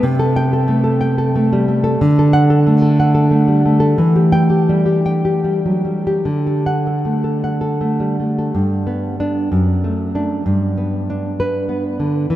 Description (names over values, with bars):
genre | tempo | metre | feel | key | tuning
romantic piece for solo classical guitar | 48-66 BPM (dotted quarters) | 6/8 | rubato | G major | A4 = 440 Hz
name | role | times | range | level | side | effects
nylon-string guitar | solo | 0.0-12.4 s | F#2 to G5 | -14 LUFS | equal | none
room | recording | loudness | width
wet huge ambient reverb, RT60 7.7 s | in a vast, echoing space | -14 LUFS | side -13 dB against mid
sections
0.0-8.5 A section; 8.5-12.4 B section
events
none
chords
0.0 Am7/C; 2.0 D; 4.0 Em; 6.3 D; 8.5 G; 9.5 D/F#; 10.5 G